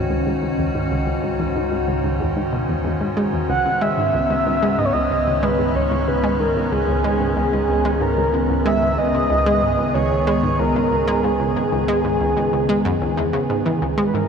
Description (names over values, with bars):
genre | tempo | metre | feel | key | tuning
ambient, sequencer-driven space music | 93 BPM | 4/4 | straight | C# dorian | A4 = 436 Hz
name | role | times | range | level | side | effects
evolving wavetable pad | sustained chords | 0.0-14.3 s | G#2 to G#4 | -22 LUFS | equal | chorus, built-in reverb
analog pluck | riff | 0.0-14.3 s | C#2 to G#3 | -23 LUFS | equal | chorus, ping-pong delay
round analog bass | bass | 0.0-13.8 s | C#2 | -28 LUFS | equal | none
breathy flute-like synth lead | melody | 3.5-14.3 s | G#4 to F#5 | -21 LUFS | equal | analog chorus, ping-pong delay
room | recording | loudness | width
wet huge ambient reverb, RT60 7.7 s | none | -17 LUFS | side -6 dB against mid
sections
0.0-13.8 A section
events
filter sweep on synth arpeggio sound 0.0-13.8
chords
0.0 C#sus2